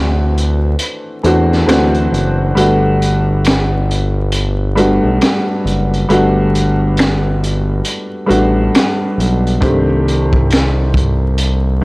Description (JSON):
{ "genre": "lo-fi hip hop", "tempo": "68 BPM", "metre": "4/4", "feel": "swing 60% on 16ths", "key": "G major", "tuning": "A4 = 442 Hz", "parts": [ { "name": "felt-muted upright piano", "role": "accompaniment", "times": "0.0-11.8 s", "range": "Eb3 to G4", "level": "-15 LUFS", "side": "equal", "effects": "cassette tape" }, { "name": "smooth gliding synth bass", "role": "bass", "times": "0.0-11.8 s", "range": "F#1 to E2", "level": "-14 LUFS", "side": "equal", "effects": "tube saturation" }, { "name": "crunchy breakbeat drum kit", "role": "drums", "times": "0.4-11.6 s", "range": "finger snaps, hi-hat, kick drum, snare drum", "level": "-17 LUFS", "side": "equal", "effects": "none" } ], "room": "light reverb, studio ambience", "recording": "dry, gritty hardware recording, vinyl crackle", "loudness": "-11 LUFS", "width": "side -24 dB against mid", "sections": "0.0-11.8 A section", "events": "break 0.0-9.6", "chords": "0.0 D7; 2.6 Gmaj7; 9.6 Cm6", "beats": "0.80 1.68 | 2.56 3.44 4.33 5.21 | 6.09 6.97 7.85 8.74 | 9.62 10.50 11.38" }